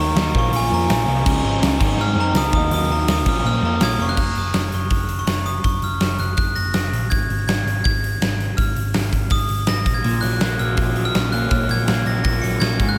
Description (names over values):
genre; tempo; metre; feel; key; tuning
indie rock; 164 BPM; 4/4; straight; unclear; A4 = 436 Hz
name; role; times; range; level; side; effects
glockenspiel with brass mallets; melody; 0.0-13.0 s; Ab5 to Db7; -26 LUFS; equal; diffuse ambient delay
crunchy overdriven guitar; riff; 0.0-4.2, 10.0-13.0 s; Ab2 to Eb4; -25 LUFS; equal; subtle chorus
hollow-body short-scale picked electric bass; bass; 0.0-12.9 s; F1 to Gb2; -25 LUFS; equal; none
big rock drum kit; drums; 0.2-12.9 s; crash cymbal, hi-hat, kick drum, snare drum; -24 LUFS; equal; none
room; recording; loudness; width
moderate lush hall reverb, RT60 1.9 s, small room reverb; dreamy mix soaked in reverb; -20 LUFS; mono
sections
0.0-4.2 A section; 4.2-13.0 B section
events
glockenspiel solo 0.0-4.2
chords
0.3 Bbm; 1.3 Db; 1.8 Ab; 2.5 Ebm; 3.3 Bbm; 4.2 Gb5; 7.1 Ab5; 9.9 Gb/Bb